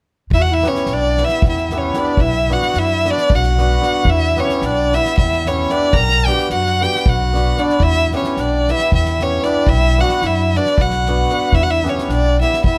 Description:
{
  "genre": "balkan folk, Balkan wedding band",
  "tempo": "225 BPM (eighths)",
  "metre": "7/8",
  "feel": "straight",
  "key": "E minor",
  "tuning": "A4 = 437 Hz",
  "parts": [
    { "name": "rich violin", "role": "melody", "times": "0.3-12.8 s", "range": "C#5 to A#5", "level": "-20 LUFS", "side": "equal", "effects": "none" },
    { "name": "mellow clarinet", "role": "second line", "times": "0.3-12.8 s", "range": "C#4 to A#4", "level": "-26 LUFS", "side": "equal", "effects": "none" },
    { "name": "upright bass", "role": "bass", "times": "0.3-12.8 s", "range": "B1 to F#2", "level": "-22 LUFS", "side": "equal", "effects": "none" },
    { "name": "soft-mallet drum kit", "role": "percussion", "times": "0.3-12.8 s", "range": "kick drum, snare drum", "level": "-24 LUFS", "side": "equal", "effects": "none" },
    { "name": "hammered dulcimer", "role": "accompaniment", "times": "0.6-12.6 s", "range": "B3 to B4", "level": "-25 LUFS", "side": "equal", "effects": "none" }
  ],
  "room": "little or no reverb",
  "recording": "close, detailed microphones",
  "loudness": "-16 LUFS",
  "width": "mono",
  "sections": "0.3-12.8 A section",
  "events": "none",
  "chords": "0.3 Em; 2.2 Bm; 4.1 Em; 5.9 Bm; 7.8 Em; 9.7 Bm; 11.5 Em",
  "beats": "| 0.33 0.60 0.86 1.13 1.40 1.66 1.93 | 2.20 2.46 2.73 3.00 3.27 3.53 3.80 | 4.07 4.33 4.60 4.87 5.13 5.40 5.67 | 5.93 6.20 6.47 6.74 7.00 7.27 7.54 | 7.80 8.07 8.33 8.60 8.87 9.13 9.40 | 9.67 9.93 10.20 10.46 10.73 11.00 11.26 | 11.53 11.79 12.06 12.33 12.59"
}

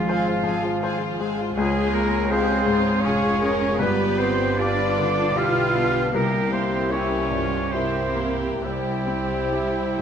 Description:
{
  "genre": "classical, romantic movement for piano and orchestra",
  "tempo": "64-84 BPM",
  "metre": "3/4",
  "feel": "rubato",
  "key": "unclear",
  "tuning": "A4 = 440 Hz",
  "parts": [
    { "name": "clear concert grand piano", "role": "melody", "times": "0.0-10.0 s", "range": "C2 to C5", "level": "-25 LUFS", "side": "left 2 dB", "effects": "none" },
    { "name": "warm studio violin section", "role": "melody", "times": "0.0-10.0 s", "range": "Bb4 to F5", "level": "-35 LUFS", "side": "left 2 dB", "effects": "none" },
    { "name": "clear oboe", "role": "second line", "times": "0.0-10.0 s", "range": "F4 to F5", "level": "-30 LUFS", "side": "right 3 dB", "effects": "none" },
    { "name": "mellow hollow silver concert flute", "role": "second line", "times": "0.0-10.0 s", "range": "F5 to F6", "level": "-30 LUFS", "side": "equal", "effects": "none" },
    { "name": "rich studio violin section", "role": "second line", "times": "0.0-10.0 s", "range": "E4 to B4", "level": "-33 LUFS", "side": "left 1 dB", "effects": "none" },
    { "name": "warm clarinet", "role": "second line", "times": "0.0-10.0 s", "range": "F4 to F5", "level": "-32 LUFS", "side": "equal", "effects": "none" },
    { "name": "warm studio viola section", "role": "accompaniment", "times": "0.0-10.0 s", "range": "C4 to Ab4", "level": "-31 LUFS", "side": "right 2 dB", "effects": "none" },
    { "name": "warm French horn section", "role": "sustained chords", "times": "0.0-10.0 s", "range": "E4 to C5", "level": "-30 LUFS", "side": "left 4 dB", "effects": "none" },
    { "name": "warm studio cello section", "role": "bass", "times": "0.0-10.0 s", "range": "F3 to F4", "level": "-29 LUFS", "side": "right 3 dB", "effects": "none" },
    { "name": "warm studio double bass section", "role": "bass", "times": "0.0-10.0 s", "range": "F1 to Db2", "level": "-31 LUFS", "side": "right 6 dB", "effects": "none" },
    { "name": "timpani", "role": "percussion", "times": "6.1-7.3 s", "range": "C3", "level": "-35 LUFS", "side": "right 2 dB", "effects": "none" }
  ],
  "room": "wet recital hall reverb, RT60 1.4 s",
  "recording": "minimal, uncompressed stereo recording",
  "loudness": "-20 LUFS",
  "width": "side -8 dB against mid",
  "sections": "0.0-10.0 A section",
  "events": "none",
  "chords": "0.0 Fm/Ab; 1.6 Db; 3.8 G7; 6.1 C7; 8.6 C",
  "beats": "0.09 0.83 | 1.57 2.31 3.05 | 3.81 4.60 5.37 | 6.14 6.92 7.73 | 8.63 9.54"
}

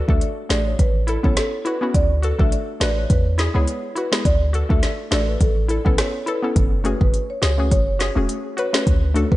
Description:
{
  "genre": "dancehall",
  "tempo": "104 BPM",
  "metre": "4/4",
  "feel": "swing 56% on 16ths",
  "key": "unclear",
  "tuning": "A4 = 440 Hz",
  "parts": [
    { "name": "marimba with medium mallets", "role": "melody", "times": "0.1-9.4 s", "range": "A4 to E5", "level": "-27 LUFS", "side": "right 1 dB", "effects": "diffuse ambient delay" },
    { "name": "hollow square pluck", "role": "accompaniment", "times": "0.1-9.3 s", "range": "G#3 to B4", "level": "-25 LUFS", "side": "left 2 dB", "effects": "chorus" },
    { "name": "warm 808-style bass", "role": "bass", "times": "0.1-9.4 s", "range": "E1 to E2", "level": "-20 LUFS", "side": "equal", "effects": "none" },
    { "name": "afro-pop drum kit", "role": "drums", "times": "0.1-9.4 s", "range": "hi-hat, kick drum, rim click, snare drum", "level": "-20 LUFS", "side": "equal", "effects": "vintage 12-bit sampler grit" }
  ],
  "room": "light reverb, digital ambience",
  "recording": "nothing above 10.6 kHz",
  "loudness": "-17 LUFS",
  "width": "side -16 dB against mid",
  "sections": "0.0-6.6 A section; 6.6-9.4 B section",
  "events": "none",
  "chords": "0.0 D; 0.8 Aadd9; 1.9 D; 3.1 E; 4.3 D; 5.4 Aadd9; 6.6 F#madd9",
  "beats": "0.21 0.79 1.37 | 1.95 2.52 3.10 3.68 | 4.25 4.83 5.41 5.98 | 6.56 7.14 7.71 8.29 | 8.87"
}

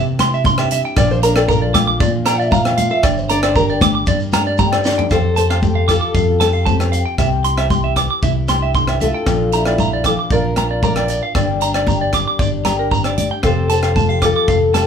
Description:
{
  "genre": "highlife guitar band",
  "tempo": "115 BPM",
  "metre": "4/4",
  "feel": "straight",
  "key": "F major",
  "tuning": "A4 = 440 Hz",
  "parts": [
    { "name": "fingerpicked steel-string acoustic guitar", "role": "accompaniment", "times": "0.0-14.9 s", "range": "F2 to G4", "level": "-24 LUFS", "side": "left 5 dB", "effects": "none" },
    { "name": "clean electric guitar", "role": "arpeggios", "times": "0.0-14.8 s", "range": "Bb4 to D6", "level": "-19 LUFS", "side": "right 4 dB", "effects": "none" },
    { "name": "fingered electric bass", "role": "bass", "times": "0.0-14.9 s", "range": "F1 to C3", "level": "-20 LUFS", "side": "equal", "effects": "none" },
    { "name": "tight funk drum kit", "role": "drums", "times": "0.2-14.9 s", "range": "hi-hat, kick drum, rim click, snare drum, toms", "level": "-20 LUFS", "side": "right 1 dB", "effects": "none" },
    { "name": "agogo bells", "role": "percussion", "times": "0.2-14.9 s", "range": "none", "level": "-30 LUFS", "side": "left 7 dB", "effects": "none" },
    { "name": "congas", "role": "percussion", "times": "0.2-14.9 s", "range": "none", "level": "-22 LUFS", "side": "left 4 dB", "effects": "none" },
    { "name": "shekere", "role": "percussion", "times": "0.2-14.9 s", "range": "none", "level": "-28 LUFS", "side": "left 2 dB", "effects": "none" },
    { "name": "fingerpicked old ladder-braced acoustic guitar", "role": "melody", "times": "1.0-14.9 s", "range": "C4 to G5", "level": "-19 LUFS", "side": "left 1 dB", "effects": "none" }
  ],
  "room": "moderate studio reverb, RT60 0.6 s",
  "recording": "band playing live in one room",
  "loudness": "-13 LUFS",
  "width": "side -7 dB against mid",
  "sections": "0.0-5.1 A section; 5.1-14.9 B section",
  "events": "steel-string acoustic guitar solo 0.0-5.1; drum fill 4.9",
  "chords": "0.0 C; 1.0 Bb; 3.0 Gm; 5.1 Fadd9; 7.2 C; 9.3 Bb; 11.4 Gm; 13.4 Fadd9",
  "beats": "0.46 | 0.97 1.49 2.01 2.52 | 3.04 3.56 4.08 4.59 | 5.11 5.63 6.15 6.67 | 7.19 7.71 8.23 8.75 | 9.27 9.79 10.32 10.84 | 11.36 11.88 12.40 12.92 | 13.45 13.97 14.49"
}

